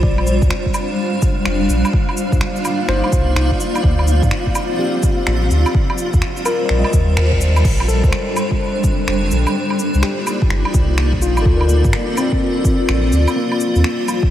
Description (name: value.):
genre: future garage.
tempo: 126 BPM.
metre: 4/4.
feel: swing 64% on 16ths.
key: unclear.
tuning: A4 = 444 Hz.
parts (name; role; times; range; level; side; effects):
tine electric piano; accompaniment; 0.0-14.3 s; Bb3 to Eb5; -24 LUFS; left 2 dB; sidechain pumping, tape echo.
granular cloud pad; sustained chords; 0.0-14.3 s; G3 to D5; -20 LUFS; equal; built-in reverb, sidechain pumping.
warm sub bass; bass; 0.0-13.8 s; F1 to G2; -16 LUFS; equal; sidechain pumping.
electronic kick drum; drums; 0.0-14.3 s; none; -17 LUFS; equal; none.
wind-like tuned noise texture; texture; 0.6-7.7 s; F4 to F5; -29 LUFS; equal; built-in reverb.
organic electronic drum kit; drums; 0.2-14.2 s; cabasa, crash cymbal, finger snaps, shaker, woodblock; -24 LUFS; right 1 dB; overdrive.
room: moderate huge ambient reverb, RT60 8.5 s.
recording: dreamy mix soaked in reverb, vinyl crackle.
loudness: -14 LUFS.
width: side -12 dB against mid.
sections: 0.0-7.7 A section; 7.7-14.3 A section.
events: band accent 7.2.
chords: 0.0 Bb69; 1.9 Cm11; 3.8 Dm7; 5.7 Eb69; 7.7 Bb69; 9.6 Cm11; 11.5 Dm7; 13.4 Eb69 (rootless).